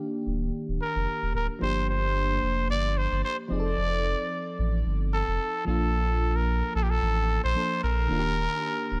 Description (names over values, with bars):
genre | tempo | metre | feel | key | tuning
afrobeats | 111 BPM | 4/4 | swing 55% on 16ths | Bb major | A4 = 440 Hz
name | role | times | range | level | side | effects
FM electric piano | accompaniment | 0.0-9.0 s | Eb3 to A4 | -35 LUFS | equal | phaser
saturated sub bass | bass | 0.3-9.0 s | D1 to Bb1 | -30 LUFS | equal | none
growling trumpet | melody | 0.8-9.0 s | G4 to D5 | -31 LUFS | equal | tape echo
room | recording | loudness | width
small room ambience | echo-heavy mix | -27 LUFS | mono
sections
0.0-9.0 A section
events
none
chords
0.0 Ebmaj7; 1.6 Gm7; 3.5 F7; 5.7 Bbmaj7; 8.1 Ebmaj7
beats
0.54 1.07 | 1.62 2.16 2.70 3.24 | 3.78 4.32 4.86 5.40 | 5.94 6.48 7.02 7.56 | 8.10 8.64